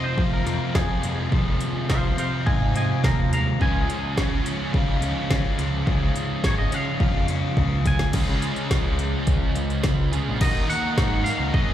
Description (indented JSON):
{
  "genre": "indie rock",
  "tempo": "106 BPM",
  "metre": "4/4",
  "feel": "straight",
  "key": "unclear",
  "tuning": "A4 = 439 Hz",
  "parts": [
    { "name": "twangy electric guitar", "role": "melody", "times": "0.0-11.7 s", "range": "Ab4 to Bb5", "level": "-30 LUFS", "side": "equal", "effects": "slapback echo, tape echo" },
    { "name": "biting overdriven guitar", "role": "riff", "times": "0.0-11.7 s", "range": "Db3 to Bb4", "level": "-29 LUFS", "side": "left 9 dB", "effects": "slapback echo" },
    { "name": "thick fuzz guitar", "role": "riff", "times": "0.0-11.7 s", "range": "F2 to Ab4", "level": "-26 LUFS", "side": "right 4 dB", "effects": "distortion, analog chorus, slapback echo" },
    { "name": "growling picked electric bass", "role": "bass", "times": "0.2-11.7 s", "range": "Ab1 to F3", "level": "-26 LUFS", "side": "equal", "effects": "overdrive" },
    { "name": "deep house drum kit", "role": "drums", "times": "0.2-11.7 s", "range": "crash cymbal, hi-hat, kick drum, snare drum", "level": "-23 LUFS", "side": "equal", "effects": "none" }
  ],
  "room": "little or no reverb",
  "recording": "live gig heard through the venue's PA, club reverb",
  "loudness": "-20 LUFS",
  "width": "side -11 dB against mid",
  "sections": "0.0-8.1 A section; 8.1-10.4 B section; 10.4-11.7 C section",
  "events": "clean electric guitar solo 0.0-8.1; drum fill 7.6-8.1",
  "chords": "0.0 Fm; 3.6 Db; 10.4 Ebm"
}